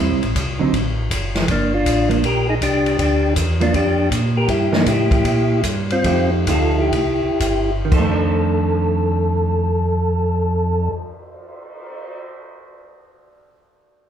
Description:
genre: soul jazz organ trio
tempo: 112-160 BPM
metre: 4/4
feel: swing 66% on 8ths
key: F mixolydian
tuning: A4 = 441 Hz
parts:
  - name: vintage hollow-body jazz guitar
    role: accompaniment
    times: 0.0-11.1 s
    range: D3 to G4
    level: -22 LUFS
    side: right 4 dB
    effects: none
  - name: mellow tonewheel organ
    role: bass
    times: 0.0-10.9 s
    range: Gb1 to Bb2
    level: -20 LUFS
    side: equal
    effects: chorus vibrato, slow rotary speaker
  - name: open jazz drum kit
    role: drums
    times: 0.2-12.1 s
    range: crash cymbal, cymbal swell, hi-hat, kick drum, ride cymbal, snare drum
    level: -23 LUFS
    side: equal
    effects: none
  - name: percussive tonewheel organ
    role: melody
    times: 1.5-10.9 s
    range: Bb3 to Bb4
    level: -19 LUFS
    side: equal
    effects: slow rotary speaker, plate reverb
room: wet large studio reverb, RT60 0.9 s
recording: heard from further back in the room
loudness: -16 LUFS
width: side -9 dB against mid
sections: 0.0-7.9 A section; 7.9-12.2 B section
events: slowing down 4.5-7.9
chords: 0.0 Am7; 0.7 Gbm; 1.5 Gm7; 4.5 C7 (rootless); 6.0 F9; 6.9 C; 7.9 F6

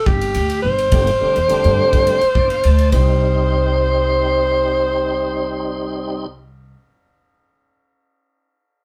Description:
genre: electric jazz fusion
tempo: 105 BPM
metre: 4/4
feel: straight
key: C dorian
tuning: A4 = 440 Hz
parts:
  - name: breathy alto saxophone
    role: melody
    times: 0.0-6.3 s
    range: G4 to C5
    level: -20 LUFS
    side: equal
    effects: none
  - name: upright bass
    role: bass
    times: 0.1-6.7 s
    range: G1 to G2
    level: -21 LUFS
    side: equal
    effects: none
  - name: crisp fusion drum kit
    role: drums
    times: 0.1-3.1 s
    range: kick drum, ride cymbal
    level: -24 LUFS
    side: equal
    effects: none
  - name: tonewheel organ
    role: accompaniment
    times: 0.9-6.3 s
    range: D3 to A5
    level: -26 LUFS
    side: equal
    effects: slow rotary speaker, overdrive, chorus vibrato
room: moderate studio reverb, RT60 0.5 s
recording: band playing live in one room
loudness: -17 LUFS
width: mono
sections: 0.0-3.2 A section; 3.2-5.5 B section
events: tonewheel organ fill 2.1-3.2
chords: 0.0 Gsus4; 2.9 Cm

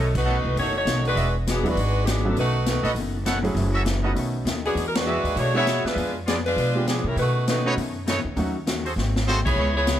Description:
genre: jazz, big band swing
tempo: 200 BPM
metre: 4/4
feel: swing 61% on 8ths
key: B mixolydian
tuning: A4 = 441 Hz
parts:
  - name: warm saxophone section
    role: melody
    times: 0.0-10.0 s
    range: F3 to C#5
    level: -24 LUFS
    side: equal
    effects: none
  - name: archtop guitar, miked and amplified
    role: accompaniment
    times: 0.0-10.0 s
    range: F#2 to Ab4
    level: -32 LUFS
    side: left 4 dB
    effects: none
  - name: clear trumpet section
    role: stabs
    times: 0.0-9.7 s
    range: D4 to F#5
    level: -29 LUFS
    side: right 2 dB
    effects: none
  - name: upright bass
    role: bass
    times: 0.0-10.0 s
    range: E1 to C3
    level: -25 LUFS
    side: equal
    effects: none
  - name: swinging big-band drum kit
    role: drums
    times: 0.1-10.0 s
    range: crash cymbal, hi-hat, kick drum, ride cymbal, snare drum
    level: -29 LUFS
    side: left 1 dB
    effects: none
  - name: clear baby grand piano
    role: accompaniment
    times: 1.6-8.5 s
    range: F#3 to G#4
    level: -28 LUFS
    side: right 2 dB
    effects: none
room: little or no reverb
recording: none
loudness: -21 LUFS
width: side -11 dB against mid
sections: 0.0-10.0 A section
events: band accent 0.1, 4.9, 9.4; drum fill 9.0-9.3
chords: 0.0 B9; 1.2 E9; 2.4 B9; 3.6 F#m7; 4.2 B9; 4.8 E9; 6.0 Fdim7; 7.2 B9; 8.4 D#m7b5; 9.0 G#7b9

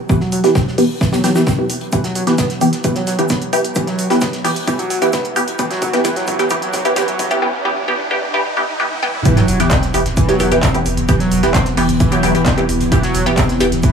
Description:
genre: driving peak-time techno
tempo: 131 BPM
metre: 4/4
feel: straight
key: E minor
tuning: A4 = 440 Hz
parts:
  - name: overdriven synth lead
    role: riff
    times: 0.1-13.9 s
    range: E3 to C4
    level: -21 LUFS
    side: right 1 dB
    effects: distortion, chorus, sidechain pumping, digital delay
  - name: filtered dub chord stab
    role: stabs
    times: 0.1-13.7 s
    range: E3 to G4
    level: -17 LUFS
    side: equal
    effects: phaser, sidechain pumping, digital delay
  - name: electronic kick drum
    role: drums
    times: 0.1-13.9 s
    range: none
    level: -18 LUFS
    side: right 1 dB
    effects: none
  - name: modern studio drum kit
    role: drums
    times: 0.1-13.9 s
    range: hi-hat, shaker, snare drum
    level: -30 LUFS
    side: left 2 dB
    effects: sidechain pumping on hats, high-pass filter on hats, high-pass filter on snare, sidechain pumping on perc, high-pass filter on perc, high-pass filter on room
  - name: techno drum kit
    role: drums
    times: 0.3-13.9 s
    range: handclaps, hi-hat, toms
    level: -24 LUFS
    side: right 1 dB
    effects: none
  - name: riser and sub drop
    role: sound effects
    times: 5.0-11.1 s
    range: none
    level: -25 LUFS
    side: right 2 dB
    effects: none
  - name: deep dark ambient pad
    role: drone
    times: 10.4-13.9 s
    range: E3 to B3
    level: -21 LUFS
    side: left 1 dB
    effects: chorus, built-in reverb, sidechain pumping
  - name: warm sub bass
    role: bass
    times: 9.5-13.8 s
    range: E1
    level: -22 LUFS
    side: equal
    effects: sidechain pumping, low-pass filter
room: moderate huge ambient reverb, RT60 8.6 s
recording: high-pass filter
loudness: -13 LUFS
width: side -6 dB against mid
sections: 0.0-9.3 A section; 9.3-13.9 B section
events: build-up 0.0-9.3; filter sweep on analog synth lead 0.0-9.3; filter sweep on synth stab 0.0-9.3; filter sweep 0.0-9.3; drum fill 1.9-7.4, 8.9-9.3; riser 5.0-9.3; drop 9.3-13.9; impact 9.3-11.1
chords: 0.0 Em

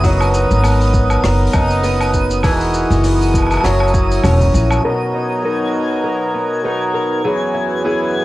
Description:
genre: folktronica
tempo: 100 BPM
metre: 4/4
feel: swing 56% on 16ths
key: B major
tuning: A4 = 440 Hz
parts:
  - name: hand-pumped harmonium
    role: sustained chords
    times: 0.0-8.2 s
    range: F#2 to A#4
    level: -20 LUFS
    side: right 1 dB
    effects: cassette tape
  - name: fingerpicked twelve-string acoustic guitar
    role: arpeggios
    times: 0.0-8.2 s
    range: B2 to A#4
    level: -18 LUFS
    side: left 1 dB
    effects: low-pass filter, cassette tape, analog delay
  - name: upright bass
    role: bass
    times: 0.0-4.8 s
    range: E1 to A#1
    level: -15 LUFS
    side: equal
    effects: none
  - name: electronic kick drum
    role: drums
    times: 0.0-4.5 s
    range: none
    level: -18 LUFS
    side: equal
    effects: overdrive
  - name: jazz brush drum kit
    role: drums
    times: 0.0-4.8 s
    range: hi-hat, rim click, shaker, woodblock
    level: -23 LUFS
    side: equal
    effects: low-pass filter on hats, low-pass filter on snare, low-pass filter on perc, low-pass filter on room
  - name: twinkling granular texture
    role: texture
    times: 0.0-8.2 s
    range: D#6 to G#6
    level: -27 LUFS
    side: equal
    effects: built-in reverb, cassette tape
room: light reverb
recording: home recording on cassette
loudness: -13 LUFS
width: side -17 dB against mid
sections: 0.0-4.8 A section; 4.8-8.2 B section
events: filter sweep on twelve-string acoustic guitar 4.8-8.2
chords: 0.0 Bmaj7/F#; 2.4 Emaj9#11; 3.6 F#7; 4.8 Bmaj7; 7.2 F#9sus4

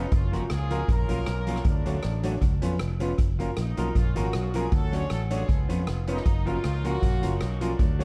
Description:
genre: ska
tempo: 156 BPM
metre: 4/4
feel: swing 53% on 8ths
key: F# major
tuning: A4 = 441 Hz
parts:
  - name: clear horn section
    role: melody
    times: 0.0-8.0 s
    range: F#3 to C#5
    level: -38 LUFS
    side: equal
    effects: tape echo, plate reverb
  - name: semi-hollow electric guitar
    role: accompaniment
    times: 0.0-8.0 s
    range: E#3 to F#4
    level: -37 LUFS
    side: equal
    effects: tape echo
  - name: clear upright piano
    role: stabs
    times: 0.0-8.0 s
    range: C#4 to C#5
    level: -37 LUFS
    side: equal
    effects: none
  - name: fingered electric bass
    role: bass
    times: 0.0-8.0 s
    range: E#1 to E#2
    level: -31 LUFS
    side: equal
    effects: none
  - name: street-band drum kit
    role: drums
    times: 0.1-8.0 s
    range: hi-hat, kick drum, rim click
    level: -29 LUFS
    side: equal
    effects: none
room: light reverb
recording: dark, warm production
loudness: -26 LUFS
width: mono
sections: 0.0-8.0 A section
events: none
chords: 0.1 F#maj7; 1.7 Dmaj7; 2.4 C#7; 3.2 F#maj7; 4.7 Dmaj7; 5.5 C#7; 6.3 F#maj7

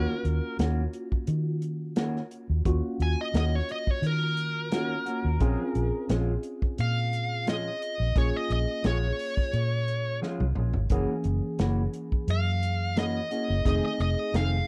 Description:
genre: straight-eighth soul blues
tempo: 87 BPM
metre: 4/4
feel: swing 54% on 16ths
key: Bb minor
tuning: A4 = 440 Hz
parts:
  - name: smooth overdriven lead guitar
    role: melody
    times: 0.0-14.7 s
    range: Bb4 to Ab5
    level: -34 LUFS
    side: equal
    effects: slapback echo
  - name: tine electric piano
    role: accompaniment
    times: 0.0-14.7 s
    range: Fb3 to Ab4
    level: -37 LUFS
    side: equal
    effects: phaser
  - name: mellow electric guitar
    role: stabs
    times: 0.0-14.6 s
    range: Eb3 to G#4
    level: -36 LUFS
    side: equal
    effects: spring reverb
  - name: vintage muted fingered electric bass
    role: bass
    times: 0.0-14.6 s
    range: F1 to Eb3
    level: -30 LUFS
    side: equal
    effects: none
  - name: warm soul drum kit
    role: drums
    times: 0.2-14.5 s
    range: hi-hat, kick drum, snare drum, toms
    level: -31 LUFS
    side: equal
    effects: none
room: little or no reverb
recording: none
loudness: -28 LUFS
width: mono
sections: 0.0-14.7 A section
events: lead electric guitar solo 0.0-14.7; drum fill 10.2-10.9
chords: 0.0 Ebm7; 5.4 Bbm7; 10.9 Gb7; 13.7 F7#9

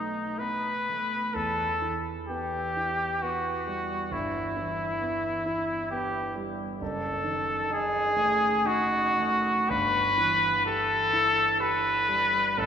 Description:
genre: classical, romantic duo for trumpet and grand piano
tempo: 56-68 BPM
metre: 3/4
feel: rubato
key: E minor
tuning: A4 = 440 Hz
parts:
  - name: clear trumpet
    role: melody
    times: 0.0-12.7 s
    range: D#4 to B4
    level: -25 LUFS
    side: left 1 dB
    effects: none
  - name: warm concert grand piano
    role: accompaniment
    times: 0.0-12.7 s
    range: F#1 to G4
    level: -33 LUFS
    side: right 2 dB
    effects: none
room: wet church reverb, RT60 3.5 s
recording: recorded in a church or concert hall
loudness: -24 LUFS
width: side -8 dB against mid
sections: 0.0-12.7 A section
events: none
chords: 0.0 B7; 1.4 Em; 4.1 Em/G; 6.8 D#dim/F#; 9.7 Em/G

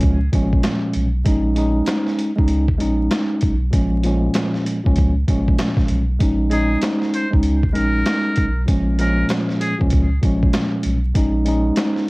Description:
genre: hip hop, boom-bap hip-hop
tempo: 97 BPM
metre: 4/4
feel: swing 62% on 16ths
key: Bb minor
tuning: A4 = 439 Hz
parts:
  - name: mellow tine electric piano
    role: accompaniment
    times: 0.0-12.1 s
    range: Bb2 to Eb4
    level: -20 LUFS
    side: equal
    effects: medium stereo tremolo, cassette tape, high-pass filter, low-pass filter
  - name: warm sub bass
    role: bass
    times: 0.0-11.7 s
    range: Bb1 to Db2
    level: -20 LUFS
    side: equal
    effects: none
  - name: boom bap sampler-style drum kit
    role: drums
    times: 0.0-12.0 s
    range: hi-hat, kick drum, snare drum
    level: -20 LUFS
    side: equal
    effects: cassette tape
  - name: trumpet with metal mute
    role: melody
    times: 6.5-9.8 s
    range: Ab4 to C5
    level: -25 LUFS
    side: equal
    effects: high-pass filter, low-pass filter, analog delay
room: light reverb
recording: home recording on cassette, vinyl crackle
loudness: -16 LUFS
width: side -24 dB against mid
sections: 0.0-12.1 A section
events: none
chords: 0.0 Bbm7; 1.3 Eb7sus4/Bb; 3.7 Bbm7; 6.2 Eb7sus4/Bb; 8.7 Bbm7; 11.2 Eb7sus4/Bb

